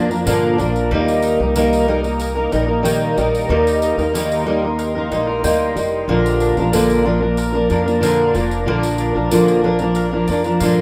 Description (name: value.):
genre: acoustic pop.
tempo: 93 BPM.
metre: 4/4.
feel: straight.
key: Bb major.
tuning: A4 = 440 Hz.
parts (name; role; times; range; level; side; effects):
fingerpicked steel-string acoustic guitar; accompaniment; 0.0-10.8 s; Bb2 to Bb4; -18 LUFS; equal; double-tracked.
glassy FM pad; sustained chords; 0.0-10.8 s; F4 to C6; -30 LUFS; equal; none.
bowl-back mandolin; arpeggios; 0.0-10.8 s; G3 to G5; -29 LUFS; equal; none.
upright bass; bass; 0.0-10.8 s; F1 to G2; -26 LUFS; equal; none.
tambourine; percussion; 0.1-10.8 s; none; -35 LUFS; equal; none.
room: moderate lush hall reverb, RT60 2.3 s.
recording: rough home demo mix.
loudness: -17 LUFS.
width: mono.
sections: 0.0-10.8 A section.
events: none.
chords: 0.0 Bb; 0.9 Eb; 6.1 Bb.